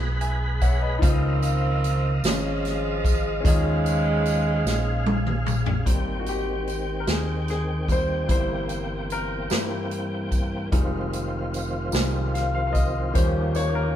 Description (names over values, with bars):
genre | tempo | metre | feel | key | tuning
slow gospel | 49 BPM (dotted quarters) | 6/8 | straight | Ab major | A4 = 440 Hz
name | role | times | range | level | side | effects
clear concert grand piano | accompaniment | 0.0-14.0 s | Ab2 to Ab5 | -30 LUFS | left 3 dB | none
overdriven tonewheel organ | sustained chords | 0.0-14.0 s | Eb3 to Cb6 | -31 LUFS | right 1 dB | slow rotary speaker, chorus vibrato
fingered electric bass | bass | 0.0-14.0 s | F1 to G2 | -26 LUFS | equal | none
swinging big-band drum kit | drums | 0.2-13.7 s | hi-hat, kick drum, snare drum, toms | -24 LUFS | equal | none
tambourine | percussion | 0.6-13.9 s | none | -41 LUFS | right 6 dB | none
mellow saxophone section | melody | 1.0-5.4 s | Db3 to Db4 | -26 LUFS | right 2 dB | none
room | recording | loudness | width
moderate stone room reverb, RT60 1.2 s | band playing live in one room | -22 LUFS | side -10 dB against mid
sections
0.0-5.9 A section; 5.9-14.0 B section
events
grand piano fill 0.0-1.0; drum fill 4.7-5.9; grand piano solo 5.9-14.0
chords
0.0 Abm7; 1.0 Dbmaj9; 3.4 Eb9sus4; 5.9 Abmaj7; 8.3 C7/G; 10.7 Fm7; 13.2 Eb7